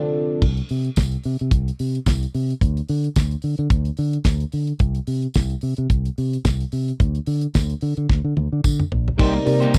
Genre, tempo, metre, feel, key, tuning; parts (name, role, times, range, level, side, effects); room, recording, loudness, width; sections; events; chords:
disco; 109 BPM; 4/4; swing 56% on 16ths; C dorian; A4 = 441 Hz
mellow tine electric piano; accompaniment; 0.0-0.4, 9.2-9.8 s; C3 to D5; -23 LUFS; equal; phaser
dark studio string section; sustained chords; 0.0-0.4, 9.2-9.8 s; C3 to Eb4; -33 LUFS; equal
fingered electric bass; bass; 0.4-9.8 s; Bb1 to D3; -24 LUFS; equal
damped 70s drum kit; drums; 0.4-9.8 s; crash cymbal, hi-hat, kick drum, snare drum, toms; -22 LUFS; equal
tambourine; percussion; 1.0-9.8 s; -38 LUFS; equal
rich symphonic violin section; second line; 9.2-9.8 s; Bb4 to Bb5; -34 LUFS; equal
electric guitar at the edge of break-up; accompaniment; 9.2-9.8 s; Bb3 to C5; -27 LUFS; equal; lush chorus
little or no reverb; dry, close 1970s-style studio recording; -21 LUFS; mono
0.4-9.2 A section
band accent 0.0-0.4; drum fill 8.1-9.2
0.4 N.C.; 9.2 Cm7